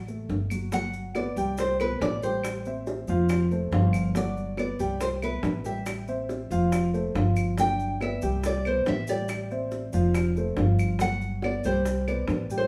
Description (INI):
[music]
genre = latin, Cuban son and guajira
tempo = 140 BPM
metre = 4/4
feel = straight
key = G major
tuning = A4 = 439 Hz
[part]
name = nylon-string guitar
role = melody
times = 0.0-12.7 s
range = B4 to G5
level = -32 LUFS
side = equal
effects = none
[part]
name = upright bass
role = bass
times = 0.0-12.7 s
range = F1 to C2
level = -31 LUFS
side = equal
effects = none
[part]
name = dark baby grand piano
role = arpeggios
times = 0.1-12.7 s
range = B2 to G5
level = -31 LUFS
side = equal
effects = none
[part]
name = bongos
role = percussion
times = 0.1-12.5 s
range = none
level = -36 LUFS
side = equal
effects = none
[part]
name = maracas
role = percussion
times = 0.1-12.7 s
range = none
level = -51 LUFS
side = equal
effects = none
[part]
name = claves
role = percussion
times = 0.5-12.3 s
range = none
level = -42 LUFS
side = equal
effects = none
[sound]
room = moderate studio reverb, RT60 0.9 s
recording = band playing live in one room, small room ambience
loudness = -27 LUFS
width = mono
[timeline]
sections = 0.7-12.7 A section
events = none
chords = 0.0 D (rootless); 0.7 Gmaj7; 1.6 C5; 2.4 Am7; 3.3 F; 4.2 Gmaj7; 5.0 Cmaj7; 5.9 Am7; 6.7 F; 7.6 Gmaj7; 8.4 C5; 9.3 Am7; 10.1 F; 11.0 Gmaj7; 11.9 C5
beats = 0.29 | 0.72 1.15 1.58 2.01 | 2.44 2.87 3.29 3.72 | 4.15 4.58 5.01 5.44 | 5.86 6.29 6.72 7.15 | 7.58 8.01 8.43 8.86 | 9.29 9.72 10.15 10.57 | 11.00 11.43 11.86 12.29